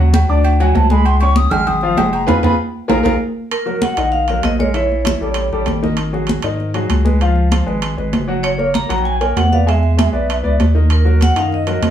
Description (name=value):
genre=Afro-Cuban jazz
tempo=195 BPM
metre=4/4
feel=straight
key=Eb minor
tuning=A4 = 440 Hz
part: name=warm baby grand piano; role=accompaniment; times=0.0-11.9 s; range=Eb3 to D6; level=-20 LUFS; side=left 2 dB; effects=none
part: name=saturated sub bass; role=bass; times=0.0-11.9 s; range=F1 to Ab2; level=-16 LUFS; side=equal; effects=none
part: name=agogo bells and timbales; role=percussion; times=0.1-11.9 s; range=none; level=-24 LUFS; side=right 4 dB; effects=none
part: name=congas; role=percussion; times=0.1-11.9 s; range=none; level=-20 LUFS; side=equal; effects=none
part: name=mellow hollow silver concert flute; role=second line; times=0.6-5.6, 8.4-11.9 s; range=Bb4 to F6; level=-23 LUFS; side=right 2 dB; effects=none
part: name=vibraphone with medium mallets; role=melody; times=3.5-5.6, 8.4-11.9 s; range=Bb4 to Bb5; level=-20 LUFS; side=equal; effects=plate reverb
room=moderate studio reverb, RT60 0.6 s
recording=heard from further back in the room, small room ambience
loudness=-13 LUFS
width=side -10 dB against mid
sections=0.0-3.5 A section; 3.5-11.9 B section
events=flute solo 0.0-3.5; band accent 2.3-3.5; drum fill 2.8-3.5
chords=0.4 D; 1.1 Db; 2.3 Fdim; 2.9 Bb5; 3.5 Ebm; 4.7 Bbdim; 5.4 A7; 6.0 Ab7(no3); 7.2 Db7; 8.4 Gbadd9; 9.7 E7; 10.9 Ebmadd9